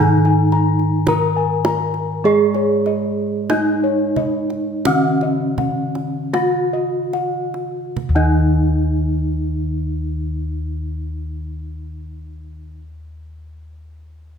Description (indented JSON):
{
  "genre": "Javanese gamelan",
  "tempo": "35-57 BPM",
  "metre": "4/4",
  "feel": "straight",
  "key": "Eb slendro",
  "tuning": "A4 = 441 Hz",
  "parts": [
    { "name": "gamelan-type bronze metallophone", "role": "melody", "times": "0.0-12.8 s", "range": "Db4-25c to Bb4", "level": "-21 LUFS", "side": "right 1 dB", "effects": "slapback echo" },
    { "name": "gamelan-type bronze metallophone", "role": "accompaniment", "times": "0.0-12.8 s", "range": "Db3-25c to Ab3", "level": "-23 LUFS", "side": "equal", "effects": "none" },
    { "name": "gamelan-type bossed gongs", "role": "arpeggios", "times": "0.0-12.8 s", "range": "Db5-25c to Bb5", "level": "-24 LUFS", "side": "left 5 dB", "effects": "none" },
    { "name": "gamelan-type bossed gongs", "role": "bass", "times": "0.0-12.7 s", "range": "Eb2 to Bb4", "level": "-23 LUFS", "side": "equal", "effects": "none" },
    { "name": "kendang", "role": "percussion", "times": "0.2-8.8 s", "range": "none", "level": "-26 LUFS", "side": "right 4 dB", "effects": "none" }
  ],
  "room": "moderate recital hall reverb, RT60 1.7 s",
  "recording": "none",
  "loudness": "-16 LUFS",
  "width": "side -7 dB against mid",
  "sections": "0.0-8.0 A section; 8.0-14.4 B section",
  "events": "slowing down 0.0-8.0",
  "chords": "none"
}